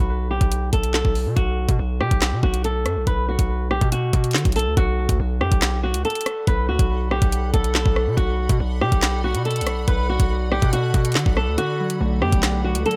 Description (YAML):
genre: hip hop, drill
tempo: 141 BPM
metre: 4/4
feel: half-time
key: B minor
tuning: A4 = 440 Hz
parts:
  - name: flamenco guitar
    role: melody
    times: 0.0-13.0 s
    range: F#4 to B4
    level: -27 LUFS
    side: equal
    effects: low-pass filter, digital delay
  - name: distorted 808-style bass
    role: bass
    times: 0.0-12.9 s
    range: B1 to D3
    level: -25 LUFS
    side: equal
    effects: distortion
  - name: drill drum kit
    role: drums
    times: 0.4-13.0 s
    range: handclaps, hi-hat, kick drum, rim click, snare drum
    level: -23 LUFS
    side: equal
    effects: overdrive
  - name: granular cloud pad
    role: sustained chords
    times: 6.4-13.0 s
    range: A4 to B5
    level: -36 LUFS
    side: equal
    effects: built-in reverb
  - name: Celtic harp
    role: accompaniment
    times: 11.6-13.0 s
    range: D3 to D4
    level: -28 LUFS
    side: equal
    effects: low-pass filter
room: digital ambience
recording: none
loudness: -21 LUFS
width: mono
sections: 0.0-4.8 A section; 4.8-13.0 B section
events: break 11.6-12.0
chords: 0.0 B7(no3); 4.8 Bm7